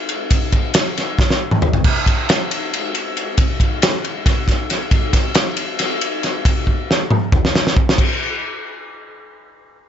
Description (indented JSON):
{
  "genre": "rock",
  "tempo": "274 BPM (eighths)",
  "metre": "7/8",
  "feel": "straight",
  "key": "none",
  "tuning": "none",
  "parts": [
    { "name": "loose indie drum kit", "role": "drums", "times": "0.1-8.1 s", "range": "crash cymbal, kick drum, ride cymbal, snare drum, toms", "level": "-15 LUFS", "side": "equal", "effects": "none" }
  ],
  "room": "little or no reverb",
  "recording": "nothing above 7.8 kHz",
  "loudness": "-15 LUFS",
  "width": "side -9 dB against mid",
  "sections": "0.0-8.0 A section; 8.0-9.9 B section",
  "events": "drum fill 1.2-1.8, 6.7-8.0",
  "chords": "none"
}